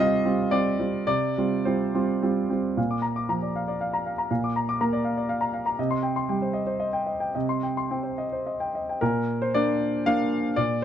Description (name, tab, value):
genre	neoclassical minimalist piano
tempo	101-123 BPM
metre	3/4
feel	rubato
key	Bb major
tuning	A4 = 441 Hz
part	clear concert grand piano	solo	0.0-10.8 s	Bb2 to D6	-23 LUFS	equal	none
room	moderate booth ambience, RT60 0.2 s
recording	dark, warm production, nothing above 10.9 kHz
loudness	-23 LUFS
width	side -9 dB against mid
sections	0.0-2.8 A section; 2.8-9.0 B section; 9.0-10.8 C section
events	none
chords	0.0 Fsus2/C; 2.8 Bb; 5.8 Cm; 9.0 Bb